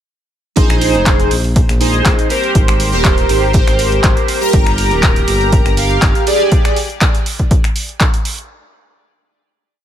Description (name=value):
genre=deep house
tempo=121 BPM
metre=4/4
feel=swing 53% on 16ths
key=unclear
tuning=A4 = 440 Hz
part: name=chorused polysynth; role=stabs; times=0.6-6.8 s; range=Eb4 to Bb5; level=-15 LUFS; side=right 1 dB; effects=phaser, sidechain pumping, ping-pong delay
part: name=smooth synth bass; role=bass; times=0.6-6.1 s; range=D1 to Bb1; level=-17 LUFS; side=equal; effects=sidechain pumping
part: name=breakbeat sampler-style drum kit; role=drums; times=0.6-6.4 s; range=hi-hat, snare drum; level=-30 LUFS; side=left 1 dB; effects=none
part: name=electronic kick drum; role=drums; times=0.6-8.1 s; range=none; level=-13 LUFS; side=equal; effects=none
part: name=punchy analog drum machine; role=drums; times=0.6-8.5 s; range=finger snaps, handclaps, hi-hat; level=-20 LUFS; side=equal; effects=none
room=digital ambience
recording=none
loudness=-11 LUFS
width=side -10 dB against mid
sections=0.6-8.5 drop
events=drop 0.6-8.5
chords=0.6 Bb9sus4; 2.5 Abmaj9; 4.5 Gm7; 6.5 G5